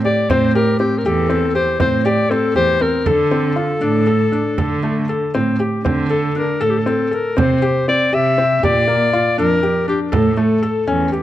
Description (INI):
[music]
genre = contemporary instrumental, chamber music in an uneven meter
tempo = 239 BPM (eighths)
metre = 11/8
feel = straight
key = D minor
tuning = A4 = 440 Hz
[part]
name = warm clarinet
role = melody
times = 0.0-11.1 s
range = G4 to E5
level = -18 LUFS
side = left 3 dB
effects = none
[part]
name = felt-muted upright piano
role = arpeggios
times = 0.1-11.2 s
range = A3 to A4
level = -20 LUFS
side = left 2 dB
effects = none
[part]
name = frame drum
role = percussion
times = 0.1-11.2 s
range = none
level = -22 LUFS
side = right 3 dB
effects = none
[part]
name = dark cello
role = bass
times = 0.3-11.2 s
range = E2 to D3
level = -20 LUFS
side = right 3 dB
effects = none
[sound]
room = light reverb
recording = close, detailed microphones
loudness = -14 LUFS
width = side -13 dB against mid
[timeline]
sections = 0.0-5.9 A section; 5.9-11.2 B section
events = none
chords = 0.3 Am7; 3.1 D7(no3); 5.9 D5; 7.4 C; 8.6 Bb6; 10.1 A